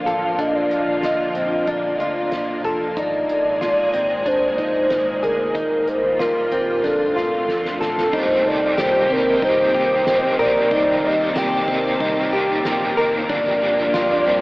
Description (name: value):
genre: dream pop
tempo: 93 BPM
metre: 4/4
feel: straight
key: unclear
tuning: A4 = 441 Hz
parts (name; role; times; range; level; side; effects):
- warbly nostalgic lead; melody; 0.0-14.4 s; A4 to G5; -20 LUFS; equal; chorus, diffuse ambient delay
- string machine, full ensemble; sustained chords; 0.0-14.4 s; Bb2 to A5; -25 LUFS; equal; ensemble chorus
- direct-recorded clean electric guitar; arpeggios; 0.0-14.4 s; C4 to Bb4; -23 LUFS; equal; lush chorus, diffuse ambient delay
- vintage muted fingered electric bass; bass; 0.0-14.4 s; F1 to C3; -37 LUFS; equal; none
- soft-mallet drum kit; drums; 0.1-14.4 s; crash cymbal, hi-hat, kick drum, ride cymbal, snare drum, tambourine; -33 LUFS; equal; none
- crunchy overdriven guitar; accompaniment; 8.1-14.4 s; G2 to G4; -25 LUFS; right 1 dB; tremolo, ensemble chorus
room: wet huge ambient reverb, RT60 7.4 s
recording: dreamy mix soaked in reverb, AM radio sound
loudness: -17 LUFS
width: side -22 dB against mid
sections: 0.0-8.1 A section; 8.1-14.4 B section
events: drum fill 6.8-8.1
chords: 0.0 Bb; 3.0 Absus2; 5.6 Ebadd9; 6.8 F6; 8.1 Cm7; 13.3 Gm7